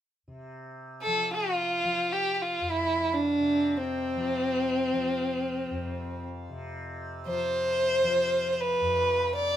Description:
indian classical; free time; F raga yaman; A4 = 440 Hz
tanpura; drone; 0.3-9.6 s; F2 to F3; -37 LUFS; equal
rich violin; melody; 1.0-9.6 s; C4 to D5; -25 LUFS; equal
wet studio reverb, RT60 0.6 s; minimal, uncompressed stereo recording; -25 LUFS; side -10 dB against mid
0.3-9.6 A section
free time

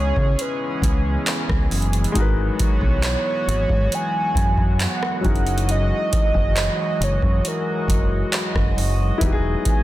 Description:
contemporary R&B; 68 BPM; 4/4; straight; A4 = 439 Hz
mellow horn-like synth lead; melody; 0.0-9.8 s; A#4 to G#5; -26 LUFS; right 2 dB; chorus, tape echo
warm concert grand piano; accompaniment; 0.0-9.8 s; C#3 to B4; -29 LUFS; left 5 dB
chorused pulse-width pad; sustained chords; 0.0-9.8 s; E3 to D#5; -26 LUFS; equal
deep dub fingered electric bass; bass; 0.0-9.5 s; E1 to C#3; -22 LUFS; equal
booming analog drum machine; drums; 0.2-9.8 s; handclaps, hi-hat, kick drum, rim click; -21 LUFS; equal
little or no reverb; dense, heavily limited modern master; -18 LUFS; side -15 dB against mid
0.0-9.8 A section
0.0 C#m9; 2.2 G#m9; 5.2 F#13; 9.2 Emaj9
0.39 1.27 | 2.15 3.04 3.92 4.80 | 5.68 6.57 7.45 8.33 | 9.21

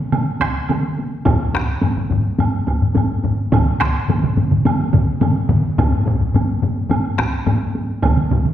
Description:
japanese traditional, taiko drum ensemble; 106 BPM; 4/4; straight
taiko ensemble; percussion; 0.1-8.5 s; -22 LUFS; right 1 dB
taiko ensemble; percussion; 0.1-8.5 s; -20 LUFS; right 2 dB
woodblock; percussion; 0.1-8.2 s; -29 LUFS; right 5 dB
taiko ensemble; percussion; 0.4-8.4 s; -21 LUFS; right 1 dB
taiko ensemble; percussion; 1.3-7.6 s; -18 LUFS; left 2 dB
wet scoring stage reverb, RT60 1.5 s; heard from further back in the room; -15 LUFS; side -11 dB against mid
0.0-8.5 A section
0.13 0.70 | 1.26 1.83 2.40 2.96 | 3.52 4.09 4.65 5.22 | 5.78 6.34 6.91 7.47 | 8.03

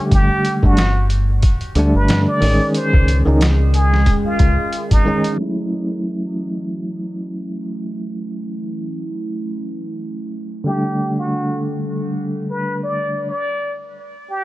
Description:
trip hop; 91 BPM; 4/4; swing 56% on 16ths; F# phrygian; A4 = 436 Hz
trumpet with plunger mute; melody; 0.0-5.3, 10.7-14.4 s; D#4 to D5; -23 LUFS; equal; tape echo
bell-like tine electric piano; accompaniment; 0.0-13.3 s; D3 to G#4; -21 LUFS; equal; tremolo, vintage 12-bit sampler grit, tape echo
warbly tape-like pad; sustained chords; 0.0-13.3 s; D#3 to A4; -27 LUFS; right 1 dB; chorus, built-in reverb
deep dub fingered electric bass; bass; 0.1-5.0 s; G1 to G2; -15 LUFS; equal
trip hop sampler-style drum kit; drums; 0.1-5.4 s; hi-hat, kick drum, snare drum; -17 LUFS; equal; small room ambience
light reverb; low-pass filter; -16 LUFS; side -17 dB against mid
0.0-5.4 A section; 5.4-14.4 B section
filter sweep on ambient pad 5.4-14.4; filter sweep 5.4-14.4; break 13.3-14.4
0.1 Gsus2; 2.7 C#sus2; 5.4 F#m7; 10.7 Gsus2
| 0.11 0.77 1.43 2.09 | 2.75 3.41 4.07 4.73 | 5.39 6.05 6.71 7.37 | 8.02 8.68 9.34 10.00 | 10.66 11.32 11.98 12.64 | 13.30 13.96

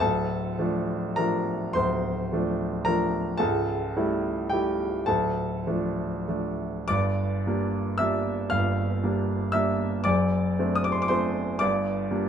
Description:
classical, romantic nocturne for solo piano; 32-40 BPM (dotted quarters); 6/8; rubato; D minor; A4 = 438 Hz
warm grand piano; solo; 0.0-12.3 s; C#1 to F6; -24 LUFS; equal
light reverb; minimal, uncompressed stereo recording; -24 LUFS; side -8 dB against mid
0.0-12.3 A section
0.0 Dm; 3.4 A7/C#; 5.1 Dm; 6.9 Gm; 10.0 D7/F#; 11.6 Gm
| 0.02 1.76 | 3.41 5.07 | 6.89 8.51 | 10.05 11.61

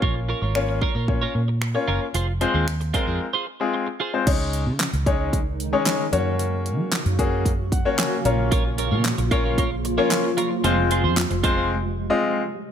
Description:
dance-pop; 113 BPM; 4/4; straight; Bb minor; A4 = 440 Hz
clear baby grand piano; accompaniment; 0.0-12.4 s; Ab3 to Bb5; -24 LUFS; left 4 dB; sidechain pumping
twelve-string electric guitar; riff; 0.0-4.2, 8.5-11.7 s; F4 to Db5; -27 LUFS; right 5 dB; wide subtle chorus
vintage muted fingered electric bass; bass; 0.0-12.1 s; F1 to Gb3; -24 LUFS; right 1 dB; sidechain pumping
pop drum kit; drums; 0.0-11.6 s; crash cymbal, finger snaps, handclaps, hi-hat, kick drum, snare drum; -24 LUFS; right 1 dB
granular cloud pad; sustained chords; 5.0-12.7 s; C3 to Gb4; -28 LUFS; right 1 dB; built-in reverb, sidechain pumping
little or no reverb; -20 LUFS; side -8 dB against mid
0.0-4.3 A section; 4.3-12.7 B section
break 3.2-4.3, 11.7-12.7; grand piano fill 7.5-8.5
0.0 Bbm; 2.1 Fm; 4.3 Dbsus2; 6.1 Gb; 8.3 Bbm; 10.6 Fm
| 0.02 0.55 1.08 1.62 | 2.15 2.68 3.21 3.74 | 4.27 4.80 5.33 5.86 | 6.39 6.93 7.46 7.99 | 8.52 9.05 9.58 10.11 | 10.64 11.17 11.71 12.24

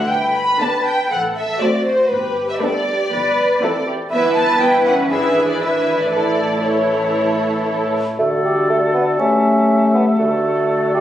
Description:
quick classical-period movement for symphony orchestra; 120 BPM; 4/4; straight; G major, D major from 4.1 s; A4 = 440 Hz
muted studio violin section; melody; 0.0-7.9 s; B4 to B5; -19 LUFS; left 1 dB
muted symphonic viola section; accompaniment; 0.0-8.0 s; D3 to E4; -24 LUFS; right 1 dB
muted studio cello section; bass; 0.1-7.9 s; F#4 to B4; -22 LUFS; equal
muted studio double bass section; bass; 0.1-8.0 s; G1 to A1; -29 LUFS; equal
muted studio violin section; second line; 0.6-8.0 s; C4 to C5; -21 LUFS; equal
dark clarinet; second line; 8.2-11.0 s; F#4 to G4; -21 LUFS; left 1 dB
mellow concert flute; second line; 8.2-11.0 s; D5 to E5; -23 LUFS; right 2 dB
warm cor anglais; second line; 8.2-11.0 s; A4; -24 LUFS; equal
warm bassoon; accompaniment; 8.2-11.0 s; G3 to C#4; -17 LUFS; equal
warm French horn section; sustained chords; 8.2-11.0 s; D3 to A3; -19 LUFS; left 2 dB
wet recital hall reverb, RT60 1.4 s; recorded on a phone in the room, club reverb, compression; -14 LUFS; side -11 dB against mid
0.0-8.2 A section; 8.2-11.0 B section
0.1 G; 1.1 F#dim/A; 2.1 G; 3.1 Am7/G; 4.1 Em/G; 5.1 E7/G#; 6.1 A; 8.2 D; 9.2 A7; 10.2 D
| 0.10 0.61 1.12 1.62 | 2.12 2.62 3.12 3.62 | 4.12 4.62 5.11 5.61 | 6.12 6.63 7.15 7.67 | 8.19 8.69 9.19 9.69 | 10.19 10.69

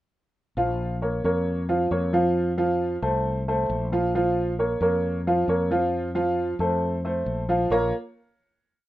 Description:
latin, Cuban son and guajira; 135 BPM; 4/4; straight; Bb harmonic minor; A4 = 442 Hz
clear baby grand piano; arpeggios; 0.6-7.9 s; F3 to Bb5; -23 LUFS; right 1 dB
mellow fretless electric bass; bass; 0.6-7.9 s; Bb1 to F2; -28 LUFS; left 1 dB
light reverb; rough home demo mix; -22 LUFS; side -15 dB against mid
0.6-7.7 montuno (vamp); 7.7-8.9 final chord
0.6 Bbm; 2.4 F; 4.1 Bbm; 5.9 F; 7.7 Bbm
| 0.58 1.02 1.47 1.92 | 2.36 2.81 3.26 3.70 | 4.15 4.59 5.04 5.48 | 5.93 6.37 6.82 7.26 | 7.71

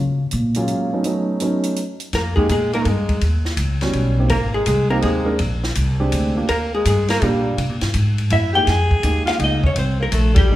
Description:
jazz, small-group swing and bop; 165 BPM; 3/4; swing 65% on 8ths; F minor; A4 = 439 Hz
upright bass; bass; 0.0-10.6 s; Ab1 to Db3; -19 LUFS; equal
compact cocktail drum kit; drums; 0.3-10.4 s; hi-hat, kick drum, ride cymbal, snare drum; -24 LUFS; equal
warm grand piano; accompaniment; 0.6-10.6 s; Gb3 to Bb4; -23 LUFS; right 2 dB
vintage hollow-body jazz guitar; melody; 2.1-10.6 s; G4 to Ab5; -21 LUFS; left 2 dB
warm alto saxophone; second line; 2.1-10.6 s; G3 to Ab4; -25 LUFS; right 1 dB
moderate recital hall reverb, RT60 1.4 s; recorded in a church or concert hall; -16 LUFS; side -14 dB against mid
0.0-2.1 A section; 2.1-10.6 B section
upright bass solo 0.0-2.1; band accent 10.3
0.0 Gbmaj9; 1.0 B9; 1.8 N.C.; 2.1 Fm11; 3.2 Eb7alt; 4.3 Abmaj9; 5.4 Bb13; 6.5 Ebmaj7; 7.6 N.C.; 8.7 Fm11
0.32 0.68 | 1.04 1.41 1.77 | 2.13 2.49 2.86 | 3.22 3.58 3.95 | 4.31 4.67 5.04 | 5.40 5.76 6.13 | 6.49 6.86 7.22 | 7.58 7.95 8.31 | 8.67 9.04 9.40 | 9.77 10.13 10.49

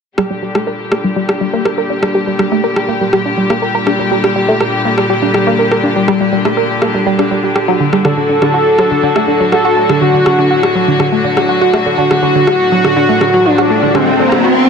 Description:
melodic techno; 122 BPM; 4/4; straight; G harmonic minor; A4 = 438 Hz
clear studio string section; sustained chords; 0.2-14.7 s; A2 to G4; -16 LUFS; left 2 dB; low-pass filter
analog pluck; arpeggios; 0.2-14.6 s; D3 to Bb4; -15 LUFS; right 1 dB; chorus, phaser, dub echo
electronic rim click; drums; 0.2-14.4 s; -18 LUFS; equal; overdrive
wide unison lead; melody; 8.0-14.7 s; C4 to A4; -13 LUFS; equal; dub echo
riser; sound effects; 12.9-14.7 s; -16 LUFS; equal
light reverb, digital ambience; -10 LUFS; side -6 dB against mid
0.2-14.7 A section
filter sweep on synth arpeggio sound 0.2-14.7; riser 12.9-14.7
0.2 Gm; 8.0 D
| 0.18 0.67 1.16 1.65 | 2.15 2.64 3.13 3.62 | 4.11 4.61 5.10 5.59 | 6.08 6.57 7.06 7.55 | 8.05 8.54 9.03 9.52 | 10.01 10.51 11.00 11.49 | 11.98 12.47 12.96 13.46 | 13.95 14.44

